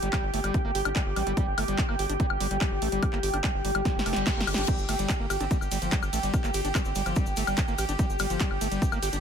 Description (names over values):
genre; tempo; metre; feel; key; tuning
psychedelic trance; 145 BPM; 4/4; straight; unclear; A4 = 438 Hz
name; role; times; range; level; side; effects
evolving wavetable pad; sustained chords; 0.0-9.2 s; G4; -33 LUFS; left 2 dB; chorus, built-in reverb, sidechain pumping
overdriven acid bass; riff; 0.0-9.2 s; F3 to G4; -34 LUFS; equal; auto-pan, sidechain pumping, dub echo
round analog bass; bass; 0.0-9.2 s; F1 to A1; -32 LUFS; equal; none
techno drum kit; drums; 0.0-9.2 s; crash cymbal, handclaps, hi-hat, ride cymbal, snare drum, woodblock; -32 LUFS; left 1 dB; none
airy breathy pad; texture; 0.0-9.2 s; G5; -35 LUFS; right 6 dB; chorus, sidechain pumping
metallic wobble bass; second line; 0.1-1.4, 5.4-6.9 s; G3 to C4; -47 LUFS; right 4 dB; none
electronic kick drum; drums; 0.1-8.9 s; none; -28 LUFS; equal; none
reverse cymbal; sound effects; 4.0-4.7 s; none; -36 LUFS; left 7 dB; none
cabasa; percussion; 4.7-9.2 s; none; -40 LUFS; left 6 dB; none
room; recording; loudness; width
little or no reverb; none; -24 LUFS; side -8 dB against mid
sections
0.0-9.2 A section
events
drum fill 3.9-4.7; reverse cymbal 4.0-4.7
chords
0.0 G5